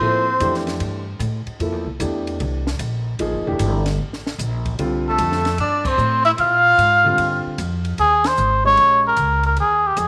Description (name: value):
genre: modal jazz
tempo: 151 BPM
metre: 4/4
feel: swing 67% on 8ths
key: F major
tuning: A4 = 440 Hz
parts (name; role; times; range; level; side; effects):
- trumpet with cup mute; melody; 0.0-0.6, 5.1-10.1 s; G4 to F5; -18 LUFS; equal; slapback echo
- bright tenor saxophone; second line; 0.0-0.6, 5.1-7.5 s; A3 to F4; -29 LUFS; equal; none
- warm concert grand piano; accompaniment; 0.0-9.2 s; D3 to Db5; -28 LUFS; equal; none
- upright bass; bass; 0.0-10.1 s; E1 to Bb2; -26 LUFS; equal; none
- compact cocktail drum kit; drums; 0.4-10.1 s; crash cymbal, hi-hat, kick drum, ride cymbal, snare drum; -34 LUFS; equal; none
room: light reverb, small room ambience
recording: none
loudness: -19 LUFS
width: mono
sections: 0.0-8.0 A section; 8.0-10.1 B section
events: band accent 5.8, 8.2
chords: 0.0 Fmaj9; 6.4 Bb9; 8.0 Eb7sus4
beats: | 0.01 0.41 0.81 1.21 | 1.61 2.01 2.41 2.81 | 3.20 3.60 4.00 4.40 | 4.80 5.19 5.59 5.99 | 6.39 6.79 7.18 7.58 | 7.98 8.38 8.77 9.17 | 9.57 9.97